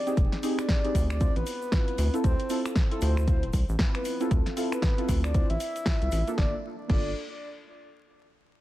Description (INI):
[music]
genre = deep house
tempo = 116 BPM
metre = 4/4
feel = swing 60% on 16ths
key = unclear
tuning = A4 = 440 Hz
[part]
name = breathy flute-like synth lead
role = melody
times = 0.0-7.1 s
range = B4 to E5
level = -35 LUFS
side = equal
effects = chorus, analog delay
[part]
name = deep mellow chord stab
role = stabs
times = 0.0-7.1 s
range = Bb3 to C5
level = -32 LUFS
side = equal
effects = chorus, sidechain pumping, analog delay
[part]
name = house drum kit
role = drums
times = 0.1-7.0 s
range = crash cymbal, finger snaps, hi-hat, snare drum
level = -34 LUFS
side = equal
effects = soft clipping on snare
[part]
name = egg shaker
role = percussion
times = 0.1-6.4 s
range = none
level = -49 LUFS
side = right 2 dB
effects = none
[part]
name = rubbery square bass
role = bass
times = 0.2-7.1 s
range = D1 to D2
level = -27 LUFS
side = equal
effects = sidechain pumping
[part]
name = electronic kick drum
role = drums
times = 0.2-7.0 s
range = none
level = -25 LUFS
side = equal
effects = none
[sound]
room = little or no reverb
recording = dense, heavily limited modern master, vinyl crackle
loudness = -24 LUFS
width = side -15 dB against mid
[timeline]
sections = 0.0-6.4 A section; 6.4-8.4 B section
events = drop 0.0-6.4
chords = 0.0 Fm9 (rootless); 1.2 Dm9; 6.4 Gm9